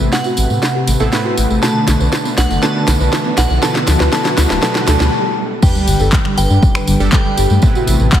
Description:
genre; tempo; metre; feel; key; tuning
progressive house; 120 BPM; 4/4; straight; G major; A4 = 438 Hz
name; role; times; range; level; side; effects
glassy synth bell; melody; 0.0-8.2 s; F#5 to A5; -22 LUFS; right 1 dB; chorus, phaser, sidechain pumping, tape echo
warm analog pad; sustained chords; 0.0-8.2 s; C3 to B4; -21 LUFS; left 1 dB; chorus, sidechain pumping
soft round pluck; arpeggios; 0.0-8.2 s; G3 to B4; -22 LUFS; left 1 dB; ensemble chorus, sidechain pumping, tape echo
supersaw stab; stabs; 0.0-8.2 s; A2 to B4; -22 LUFS; right 2 dB; sidechain pumping, tape echo
round analog bass; bass; 0.0-8.1 s; D1 to A2; -14 LUFS; equal; sidechain pumping
tambourine; percussion; 0.0-8.2 s; none; -28 LUFS; right 3 dB; none
riser and sub drop; sound effects; 2.0-7.6 s; none; -25 LUFS; equal; none
house drum kit; drums; 0.1-8.2 s; crash cymbal, finger snaps, handclaps, hi-hat, snare drum; -20 LUFS; equal; overdrive, studio reverb
electronic kick drum; drums; 5.6-8.2 s; none; -12 LUFS; equal; overdrive, studio reverb
room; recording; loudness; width
moderate lush hall reverb, RT60 1.8 s; heavily compressed radio sound; -11 LUFS; side -10 dB against mid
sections
0.0-5.6 A section; 5.6-8.2 B section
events
build-up 0.0-5.6; drum fill 0.0-5.1; filter sweep on synth pluck 0.0-5.6; riser 2.0-5.1; stop 5.1-5.6; drop 5.6-8.2; impact 5.6-7.6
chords
0.0 Amadd9; 1.6 Bm7; 3.6 D6; 5.6 G; 7.6 Amadd9

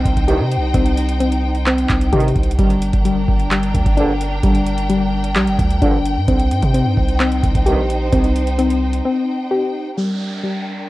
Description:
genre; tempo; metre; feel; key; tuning
hip hop, trap; 130 BPM; 4/4; half-time; G minor; A4 = 436 Hz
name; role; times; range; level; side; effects
warm symphonic string section; sustained chords; 0.0-10.9 s; D4 to G5; -24 LUFS; equal; low-pass filter
soft round pluck; arpeggios; 0.0-10.9 s; G3 to G4; -20 LUFS; left 2 dB; chorus, low-pass filter, tape echo
long sustained 808-style bass; bass; 0.0-9.0 s; G1 to C3; -19 LUFS; equal; none
booming analog drum machine; drums; 0.1-9.0 s; handclaps, hi-hat, kick drum; -18 LUFS; equal; overdrive
mellow brass ensemble; stabs; 0.3-7.8 s; Bb1 to Eb3; -25 LUFS; right 3 dB; tape echo
downlifter; sound effects; 10.0-10.9 s; none; -30 LUFS; right 2 dB; none
room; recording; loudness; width
digital ambience; worn, warbling old tape, cassette tape, warbly pitch drift; -14 LUFS; side -17 dB against mid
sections
0.0-10.0 A section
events
break 9.1-10.0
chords
0.0 Cm; 2.6 Gm; 6.3 Cm; 10.0 Gm

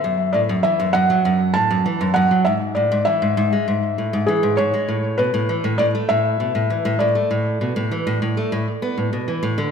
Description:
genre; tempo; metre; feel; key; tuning
folktronica; 99 BPM; 4/4; straight; unclear; A4 = 441 Hz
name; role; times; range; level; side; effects
felt-muted upright piano; melody; 0.0-9.1 s; G#4 to A5; -20 LUFS; equal; tape echo
fingerpicked steel-string acoustic guitar; arpeggios; 0.0-9.7 s; F#2 to B3; -20 LUFS; equal; none
room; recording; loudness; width
wet recital hall reverb, RT60 1.4 s; none; -17 LUFS; side -6 dB against mid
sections
0.0-9.7 A section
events
none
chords
0.0 F#m7; 2.5 N.C.; 4.9 E7sus4 (rootless)

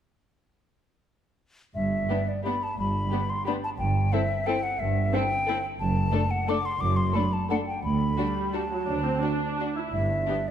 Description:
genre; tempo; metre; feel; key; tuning
classical; 176 BPM; 3/4; uneven beats, rubato; G major; A4 = 440 Hz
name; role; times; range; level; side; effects
hollow concert flute; second line; 1.7-10.5 s; D5 to D6; -29 LUFS; left 2 dB; none
muted studio cello section; bass; 1.8-10.2 s; D2 to G2; -30 LUFS; right 2 dB; none
muted studio double bass section; bass; 1.8-10.2 s; F#1 to D2; -30 LUFS; right 3 dB; none
muted studio violin section; melody; 2.1-10.4 s; F#4 to A4; -36 LUFS; left 5 dB; none
muted chamber violin section; second line; 2.1-10.4 s; D4 to E4; -36 LUFS; left 4 dB; none
muted studio viola section; accompaniment; 2.1-10.4 s; F#3 to E4; -32 LUFS; right 1 dB; none
room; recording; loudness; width
moderate scoring stage reverb, RT60 1.8 s; none; -24 LUFS; side -9 dB against mid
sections
1.8-10.5 A section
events
none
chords
1.8 G; 3.8 Am7/G (rootless); 5.8 D/F#; 7.8 D5; 9.9 G

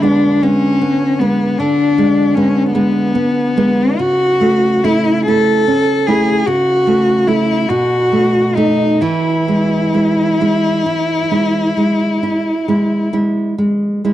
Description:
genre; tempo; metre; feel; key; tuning
romantic duo for cello and classical guitar; 44-53 BPM (dotted quarters); 12/8; rubato; E major; A4 = 435 Hz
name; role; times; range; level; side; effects
rich cello; melody; 0.0-13.1 s; B3 to A4; -15 LUFS; left 2 dB; none
nylon-string guitar; accompaniment; 0.0-14.1 s; B2 to E4; -15 LUFS; right 2 dB; none
room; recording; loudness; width
small room ambience; dry, close 1970s-style studio recording, lossy compression artefacts; -12 LUFS; side -13 dB against mid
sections
0.0-14.1 A section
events
none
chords
0.0 E7/D (rootless); 4.0 A/C#; 7.7 B7; 9.0 E

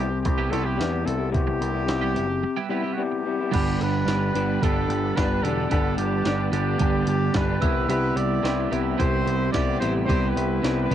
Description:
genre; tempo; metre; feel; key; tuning
indie rock; 110 BPM; 4/4; straight; G major; A4 = 440 Hz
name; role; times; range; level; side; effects
clear trumpet; melody; 0.0-10.9 s; E4 to D5; -29 LUFS; equal; cassette tape
electric guitar through a small old amp; riff; 0.0-10.9 s; G2 to E4; -28 LUFS; left 8 dB; cassette tape
twelve-string electric guitar; riff; 0.0-10.9 s; G2 to G4; -28 LUFS; right 9 dB; analog chorus, cassette tape
picked electric bass; bass; 0.0-10.9 s; E1 to E2; -27 LUFS; equal; none
jungle sampler-style drum kit; drums; 0.3-10.9 s; crash cymbal, hi-hat, kick drum, snare drum, tambourine; -26 LUFS; right 1 dB; cassette tape
glockenspiel with rubber mallets; second line; 3.5-10.9 s; B5 to E6; -37 LUFS; right 9 dB; cassette tape
bright tonewheel organ; sustained chords; 3.5-10.9 s; G3 to B5; -38 LUFS; right 1 dB; none
room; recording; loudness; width
light reverb; home recording on cassette, nothing above 10.4 kHz; -21 LUFS; side -10 dB against mid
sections
0.0-3.5 A section; 3.5-10.9 B section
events
break 2.4-3.5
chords
0.0 Cmaj7; 3.5 G; 7.6 Cmaj7

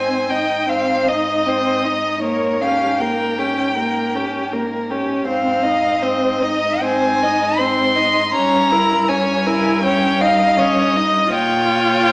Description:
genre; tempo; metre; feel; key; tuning
classical, slow romantic movement for string quartet; 79 BPM; 4/4; rubato; Ab major; A4 = 440 Hz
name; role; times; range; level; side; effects
rich violin; melody; 0.0-12.1 s; Db5 to C6; -18 LUFS; left 1 dB; none
rich violin; second line; 0.0-12.1 s; G4 to Eb5; -21 LUFS; equal; none
rich viola; accompaniment; 0.0-12.1 s; Bb3 to F4; -20 LUFS; equal; none
dark cello; bass; 0.0-12.1 s; G2 to Bb2; -25 LUFS; equal; none
room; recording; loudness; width
wet stone room reverb, RT60 1.3 s; small speaker sound; -15 LUFS; side -28 dB against mid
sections
0.0-12.1 A section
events
none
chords
0.0 Ab; 2.2 Gdim/Ab; 5.3 Ab; 8.3 Gdim7; 9.8 Eb7/G; 11.3 Gm7b5/Bb

